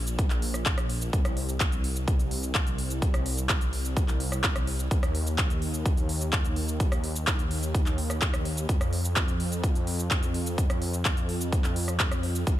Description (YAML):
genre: EDM, festival progressive house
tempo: 127 BPM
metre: 4/4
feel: straight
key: unclear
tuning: A4 = 440 Hz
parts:
  - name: wide detuned saw bass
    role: bass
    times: 0.0-12.6 s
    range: Bb1 to F2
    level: -30 LUFS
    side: equal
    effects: chorus, sidechain pumping
  - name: big-room dance drum kit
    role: drums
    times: 0.1-12.6 s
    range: handclaps, hi-hat, rim click, shaker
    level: -31 LUFS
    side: equal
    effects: none
  - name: electronic kick drum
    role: drums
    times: 0.2-12.6 s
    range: none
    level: -26 LUFS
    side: equal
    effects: none
room: little or no reverb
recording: none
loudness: -25 LUFS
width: side -13 dB against mid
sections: 0.0-12.6 A section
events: none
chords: none